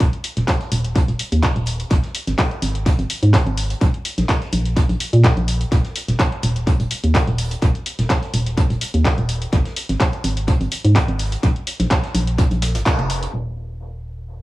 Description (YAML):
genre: piano house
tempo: 126 BPM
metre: 4/4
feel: swing 54% on 16ths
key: unclear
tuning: A4 = 440 Hz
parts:
  - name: organ-like FM bass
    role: bass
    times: 0.0-14.4 s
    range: Eb1 to Bb2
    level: -19 LUFS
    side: equal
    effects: sidechain pumping
  - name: electronic kick drum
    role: drums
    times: 0.0-13.0 s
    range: none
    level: -17 LUFS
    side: equal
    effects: none
  - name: house drum kit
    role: drums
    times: 0.0-13.4 s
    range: crash cymbal, handclaps, hi-hat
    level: -24 LUFS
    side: equal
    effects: low-pass filter on hats, low-pass filter on snare, low-pass filter on cymbals, tape echo
  - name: vintage brush drum kit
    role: drums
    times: 0.0-13.3 s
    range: hi-hat, snare drum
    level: -35 LUFS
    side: right 2 dB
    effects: high-pass filter on hats, high-pass filter on snare, high-pass filter on room, tape echo
room: light reverb, small room ambience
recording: echo-heavy mix, low-pass filter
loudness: -16 LUFS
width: side -18 dB against mid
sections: 0.0-13.3 A section; 13.3-14.4 B section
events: band accent 12.9; filter sweep 13.3-14.4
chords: none